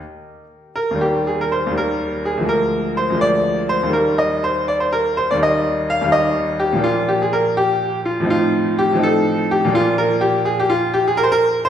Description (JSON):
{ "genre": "classical, baroque-style suite movement for grand piano", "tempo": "82 BPM (dotted quarters)", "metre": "12/8", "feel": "rubato", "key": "Eb major", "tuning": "A4 = 436 Hz", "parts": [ { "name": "bright grand piano", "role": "solo", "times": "0.0-11.7 s", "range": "D2 to F5", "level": "-16 LUFS", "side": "equal", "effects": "none" } ], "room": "wet recital hall reverb, RT60 1.7 s", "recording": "heard from further back in the room, lossy compression artefacts", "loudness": "-16 LUFS", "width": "side -9 dB against mid", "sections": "1.0-11.7 A section", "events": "none", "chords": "0.0 Eb; 2.5 Bb7/D; 3.9 Eb; 6.8 Bb; 8.3 F7/A; 9.7 Bb" }